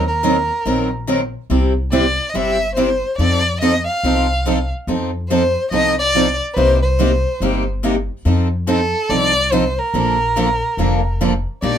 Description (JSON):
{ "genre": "acoustic string swing (jazz manouche)", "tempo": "142 BPM", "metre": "4/4", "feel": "swing 64% on 8ths", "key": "Bb major", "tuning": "A4 = 440 Hz", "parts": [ { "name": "warm violin", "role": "melody", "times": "0.0-11.8 s", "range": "A4 to F5", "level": "-18 LUFS", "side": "equal", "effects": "none" }, { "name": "picked steel-string acoustic guitar", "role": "accompaniment", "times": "0.0-11.8 s", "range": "C3 to Bb4", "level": "-23 LUFS", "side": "right 8 dB", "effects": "none" }, { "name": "picked swing-style acoustic guitar", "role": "accompaniment", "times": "0.0-11.8 s", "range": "C3 to Bb4", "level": "-20 LUFS", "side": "left 2 dB", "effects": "none" }, { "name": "upright bass", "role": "bass", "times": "0.0-11.8 s", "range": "F1 to F2", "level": "-20 LUFS", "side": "left 1 dB", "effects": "none" } ], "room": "light reverb", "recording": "minimal, uncompressed stereo recording", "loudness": "-15 LUFS", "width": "side -9 dB against mid", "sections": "0.0-11.6 A section", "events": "none", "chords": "0.0 Ebm6; 1.5 C; 3.2 F7; 6.6 Cm7; 8.2 F7; 9.9 Bbmaj7" }